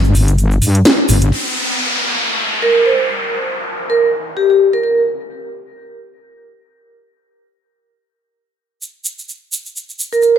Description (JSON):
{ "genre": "bass house", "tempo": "128 BPM", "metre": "4/4", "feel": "swing 56% on 16ths", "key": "G minor", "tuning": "A4 = 440 Hz", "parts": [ { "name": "wobble bass", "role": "bass", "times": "0.0-1.3 s", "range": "G1 to G2", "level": "-12 LUFS", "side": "equal", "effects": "chorus, overdrive" }, { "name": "egg shaker", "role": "percussion", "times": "0.0-1.3, 8.8-10.3 s", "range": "none", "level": "-23 LUFS", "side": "right 3 dB", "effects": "none" }, { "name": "house drum kit", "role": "drums", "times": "0.1-1.4 s", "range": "crash cymbal, hi-hat, snare drum", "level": "-15 LUFS", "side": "equal", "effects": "overdrive, low-pass filter on hats, low-pass filter on snare, low-pass filter on cymbals, low-pass filter on room" }, { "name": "downlifter", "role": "sound effects", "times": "1.3-5.1 s", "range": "none", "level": "-19 LUFS", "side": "left 1 dB", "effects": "none" }, { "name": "vibraphone with medium mallets", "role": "melody", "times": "2.6-4.9, 10.1-10.4 s", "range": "G4 to C5", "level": "-14 LUFS", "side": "right 1 dB", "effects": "dub echo" } ], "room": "moderate lush hall reverb, RT60 1.7 s", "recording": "none", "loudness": "-13 LUFS", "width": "side -8 dB against mid", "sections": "0.0-1.3 A section; 1.3-10.4 B section", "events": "band accent 0.9", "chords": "none", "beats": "0.38 0.85 | 1.32 1.79 2.26 2.73 | 3.20 3.67 4.13 4.60 | 5.07 5.54 6.01 6.48 | 6.95 7.42 7.88 8.35 | 8.82 9.29 9.76 10.23" }